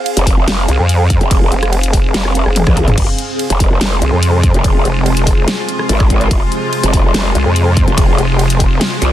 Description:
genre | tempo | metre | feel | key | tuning
heavy wobble dubstep | 144 BPM | 4/4 | half-time | F minor | A4 = 443 Hz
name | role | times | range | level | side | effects
airy breathy pad | texture | 0.0-9.1 s | C4 to C6 | -21 LUFS | equal | chorus, phaser, sidechain pumping
dubstep drum kit | drums | 0.1-9.1 s | crash cymbal, hi-hat, ride cymbal, rim click, snare drum, toms | -20 LUFS | equal | none
growl bass | bass | 0.2-9.1 s | F1 to C2 | -14 LUFS | equal | chorus, overdrive
electronic kick drum | drums | 0.3-8.7 s | none | -13 LUFS | equal | none
vowel-sweep wobble bass | bass | 0.7-8.8 s | F1 to F2 | -13 LUFS | equal | chorus, overdrive
evolving wavetable pad | sustained chords | 3.3-9.1 s | C3 to F4 | -19 LUFS | left 1 dB | ensemble chorus, built-in reverb, sidechain pumping
room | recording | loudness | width
little or no reverb | dense, heavily limited modern master | -10 LUFS | side -12 dB against mid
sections
0.0-9.1 A section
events
drum fill 2.6-3.0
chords
0.0 Fm

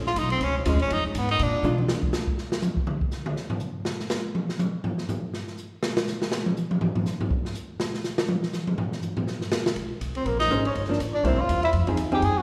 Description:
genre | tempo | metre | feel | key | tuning
jazz, small-group swing and bop | 244 BPM | 4/4 | swing 57% on 8ths | unclear | A4 = 440 Hz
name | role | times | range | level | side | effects
upright bass | bass | 0.0-1.9, 9.8-12.4 s | G1 to Cb3 | -29 LUFS | equal | none
clear tenor saxophone | melody | 0.1-1.7, 10.2-12.4 s | F3 to Ab4 | -29 LUFS | equal | none
open jazz drum kit | drums | 0.1-12.3 s | hi-hat, kick drum, ride cymbal, snare drum, toms | -30 LUFS | equal | none
vintage hollow-body jazz guitar | accompaniment | 0.7-1.8, 10.5-12.2 s | F3 to C5 | -31 LUFS | equal | none
dark trumpet | second line | 10.2-12.4 s | Bb4 to Ab5 | -30 LUFS | equal | none
room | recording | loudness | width
wet recital hall reverb, RT60 1.6 s | recorded in a church or concert hall | -26 LUFS | mono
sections
0.0-1.9 A section; 1.9-9.8 A section; 9.8-12.4 B section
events
tenor saxophone solo 0.0-1.9; drum fill 1.6; drum solo 1.9-9.8; band accent 10.4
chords
0.0 Bbm7; 0.9 Fm7b5; 1.4 Bb7; 1.9 N.C.; 9.8 Bbm9; 10.7 Gm7; 11.2 C7; 11.7 Fm7

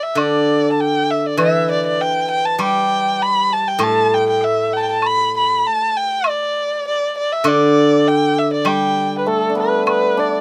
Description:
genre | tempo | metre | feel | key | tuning
chinese traditional, Chinese chamber ensemble | 99 BPM | 2/4 | straight | G gong mode | A4 = 440 Hz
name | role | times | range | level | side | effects
dark erhu | melody | 0.0-10.4 s | A4 to B5 | -20 LUFS | equal | none
steel-string zither | accompaniment | 0.2-10.4 s | A2 to G3 | -20 LUFS | equal | none
woodblock | percussion | 0.2-10.0 s | none | -22 LUFS | equal | none
hammered dulcimer | second line | 9.3-10.4 s | A3 to D4 | -20 LUFS | equal | none
room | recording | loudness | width
light reverb | none | -17 LUFS | mono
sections
0.2-9.9 A section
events
none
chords
none

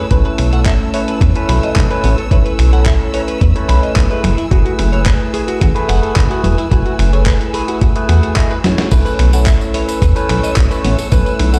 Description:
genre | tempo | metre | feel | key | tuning
nu-disco, nu disco | 109 BPM | 4/4 | straight | unclear | A4 = 440 Hz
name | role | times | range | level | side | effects
barky tine electric piano | accompaniment | 0.0-11.6 s | A3 to G#5 | -22 LUFS | equal | phaser, slapback echo
warm studio string section | sustained chords | 0.0-11.6 s | B4 to E6 | -31 LUFS | equal | sidechain pumping
clean electric guitar | riff | 0.0-11.6 s | F#3 to B5 | -25 LUFS | equal | lush chorus, slapback echo
chorused synth bass | bass | 0.1-11.6 s | E1 to F#2 | -15 LUFS | equal | none
dusty soul sampler-style drum kit | drums | 0.1-11.6 s | crash cymbal, finger snaps, handclaps, hi-hat, ride cymbal, snare drum | -26 LUFS | equal | none
electronic kick drum | drums | 0.1-11.2 s | none | -16 LUFS | equal | none
tambourine | percussion | 8.9-11.6 s | none | -34 LUFS | equal | none
room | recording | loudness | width
light reverb | played on a big sound system in a bare room, stone room reverb | -14 LUFS | mono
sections
0.0-11.6 A section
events
drum fill 8.6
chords
0.1 B9sus4; 4.2 F#m11; 8.9 B9sus4

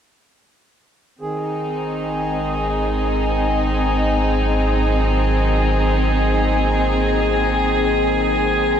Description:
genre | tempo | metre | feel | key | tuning
ambient | 57 BPM | 4/4 | straight | Ab mixolydian | A4 = 441 Hz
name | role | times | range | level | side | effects
dark chamber string section | sustained chords | 1.2-8.8 s | C4 to Ab4 | -21 LUFS | equal | shimmer reverb
round analog bass | bass | 1.2-8.8 s | Ab1 | -22 LUFS | equal | none
hand-pumped harmonium | drone | 1.2-8.8 s | Eb3 to Ab4 | -25 LUFS | right 1 dB | none
drifting glass-harmonics texture | texture | 1.8-8.8 s | Ab4 to Ab5 | -24 LUFS | left 1 dB | chorus, built-in reverb, shimmer reverb
vibraphone with medium mallets | arpeggios | 2.3-8.8 s | Gb3 to Gb4 | -34 LUFS | left 1 dB | none
room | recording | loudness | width
wet cathedral reverb, RT60 5.0 s | in a vast, echoing space, cassette tape | -16 LUFS | side -8 dB against mid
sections
1.2-8.8 A section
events
none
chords
1.2 Ab

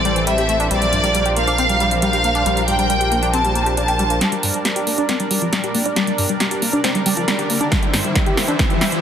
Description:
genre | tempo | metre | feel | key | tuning
uplifting trance | 137 BPM | 4/4 | straight | G dorian | A4 = 439 Hz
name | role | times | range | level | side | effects
warm symphonic violin section | second line | 0.0-4.2 s | D5 to A5 | -19 LUFS | equal | dub echo
gritty driven synth bass | bass | 0.0-4.2 s | A1 to Bb1 | -22 LUFS | equal | distortion, tube saturation, sidechain pumping
lush unison pad | sustained chords | 0.1-9.0 s | E3 to E5 | -24 LUFS | right 1 dB | chorus, sidechain pumping
tight sequenced synth | arpeggios | 0.1-9.0 s | G2 to G4 | -22 LUFS | left 1 dB | chorus, sidechain pumping, dub echo
big-room dance drum kit | drums | 0.1-9.0 s | hi-hat, snare drum | -22 LUFS | right 1 dB | none
riser | sound effects | 5.7-9.0 s | none | -27 LUFS | left 1 dB | none
electronic kick drum | drums | 7.7-8.7 s | none | -19 LUFS | right 1 dB | overdrive
room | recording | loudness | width
moderate lush hall reverb, RT60 1.6 s | dense, heavily limited modern master | -15 LUFS | side -8 dB against mid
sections
0.0-4.2 A section; 4.2-9.0 B section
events
build-up 4.2-9.0; drum fill 4.2-9.0; filter sweep on synth arpeggio sound 4.2-9.0; riser 5.7-9.0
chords
0.0 Am; 0.7 Bbadd9; 4.2 Gm; 7.7 C

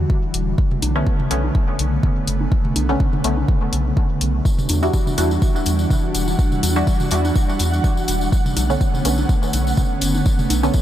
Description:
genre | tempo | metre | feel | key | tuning
dub techno | 124 BPM | 4/4 | swing 55% on 16ths | E minor | A4 = 440 Hz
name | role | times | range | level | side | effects
airy breathy pad | sustained chords | 0.0-10.8 s | C#3 to F#4 | -24 LUFS | equal | chorus, sidechain pumping
soft dub sub bass | bass | 0.0-10.7 s | E1 to E2 | -21 LUFS | equal | tube saturation, sidechain pumping
electronic kick drum | drums | 0.1-10.8 s | none | -18 LUFS | equal | overdrive
electronic hi-hat | drums | 0.3-10.6 s | none | -24 LUFS | left 3 dB | overdrive
electronic toms and bongos | percussion | 0.7-10.6 s | none | -30 LUFS | right 2 dB | none
filtered dub chord stab | stabs | 1.0-10.8 s | D3 to F#4 | -26 LUFS | equal | chorus, phaser, sidechain pumping, dub echo
tambourine | percussion | 4.5-10.8 s | none | -30 LUFS | left 2 dB | none
flickering grainy texture | texture | 5.4-10.8 s | F#5 | -30 LUFS | right 4 dB | built-in reverb, sidechain pumping
room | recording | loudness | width
light reverb, digital ambience | none | -16 LUFS | side -12 dB against mid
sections
0.0-10.8 A section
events
none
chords
0.0 Em9; 0.6 Bm9; 4.5 Em9; 8.3 Bm9

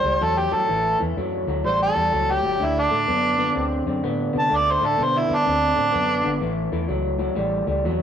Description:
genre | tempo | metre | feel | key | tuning
blues | 126 BPM | 4/4 | swing 65% on 8ths | unclear | A4 = 440 Hz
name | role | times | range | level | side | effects
overdriven harmonica | melody | 0.0-6.4 s | D4 to A5 | -20 LUFS | right 1 dB | none
vintage muted fingered electric bass | bass | 0.0-8.0 s | G1 to C3 | -28 LUFS | equal | none
electric guitar through a small old amp | riff | 0.1-8.0 s | A2 to C4 | -24 LUFS | left 1 dB | none
room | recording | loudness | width
wet stone room reverb, RT60 1.4 s | rough rehearsal-room recording | -19 LUFS | side -8 dB against mid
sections
0.0-8.0 A section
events
harmonica solo 0.0-8.0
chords
0.0 A7; 2.6 D7; 6.4 A7

